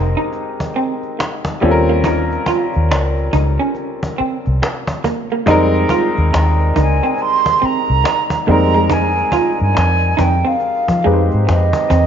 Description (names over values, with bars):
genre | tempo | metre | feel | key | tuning
R&B, neo-soul | 70 BPM | 4/4 | swing 63% on 16ths | F minor | A4 = 440 Hz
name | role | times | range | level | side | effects
electric guitar through a small old amp | second line | 0.0-12.1 s | Ab3 to F4 | -21 LUFS | right 3 dB | none
clear upright piano | accompaniment | 0.0-12.1 s | G3 to C5 | -19 LUFS | left 2 dB | none
vintage muted fingered electric bass | bass | 0.0-12.1 s | F1 to F3 | -16 LUFS | equal | none
cajon | drums | 0.2-12.1 s | none | -23 LUFS | equal | none
breathy mellow concert flute | melody | 6.8-12.1 s | Eb5 to C6 | -17 LUFS | right 4 dB | slapback echo
room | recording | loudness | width
light reverb | nothing above 7.5 kHz | -13 LUFS | side -8 dB against mid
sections
0.0-12.1 A section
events
none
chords
0.0 Fm11 (rootless); 1.6 Eb13; 5.5 Fm11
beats
0.33 1.18 | 2.04 2.90 3.75 4.61 | 5.47 6.33 7.18 8.04 | 8.90 9.75 10.61 11.47